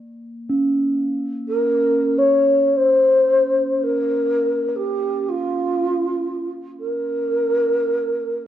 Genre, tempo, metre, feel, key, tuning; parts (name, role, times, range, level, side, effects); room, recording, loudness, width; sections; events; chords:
world meditative, free-time meditation music; free time; A4 = 441 Hz
bronze singing bowl; texture; 0.0-8.5 s; Bb3 to Db4; -24 LUFS; right 2 dB
breathy mellow bass flute; melody; 1.5-8.5 s; F4 to Db5; -18 LUFS; equal; ping-pong delay
wet studio reverb, RT60 0.6 s; worn, warbling old tape, cassette tape, warbly pitch drift; -17 LUFS; side -11 dB against mid
0.4-8.5 A section